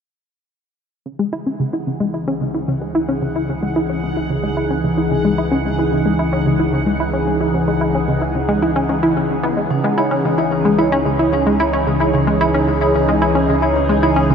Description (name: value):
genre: ambient, sequencer-driven space music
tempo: 111 BPM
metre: 4/4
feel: straight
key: C# minor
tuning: A4 = 439 Hz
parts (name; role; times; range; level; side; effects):
- phased analog pad; sustained chords; 1.1-14.3 s; C#3 to G#4; -19 LUFS; left 1 dB; phaser, chorus
- analog pluck; riff; 1.1-14.3 s; C#3 to E4; -18 LUFS; equal; chorus, ping-pong delay
- warm sub bass; bass; 1.1-14.3 s; C#2; -26 LUFS; equal; none
- bubbling stepped-filter texture; texture; 1.7-9.7 s; F#5; -32 LUFS; right 5 dB; chorus, built-in reverb
- vibraphone with medium hard mallets; arpeggios; 9.7-14.2 s; C#4 to C#5; -22 LUFS; right 2 dB; auto-pan, ping-pong delay
room: wet huge ambient reverb, RT60 7.9 s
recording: in a vast, echoing space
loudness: -15 LUFS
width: side -7 dB against mid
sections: 1.1-9.7 A section; 9.7-14.3 B section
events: fade-in on sub bass 1.1-9.7; fade-in on synth texture 1.1-9.7; filter sweep on synth arpeggio sound 1.1-9.7; filter sweep on analog synth pad 1.1-9.7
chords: 1.1 C#madd9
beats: | 1.06 1.60 2.14 2.68 | 3.22 3.76 4.30 4.84 | 5.38 5.92 6.46 7.00 | 7.54 8.09 8.62 9.17 | 9.71 10.25 10.79 11.33 | 11.87 12.41 12.95 13.49 | 14.03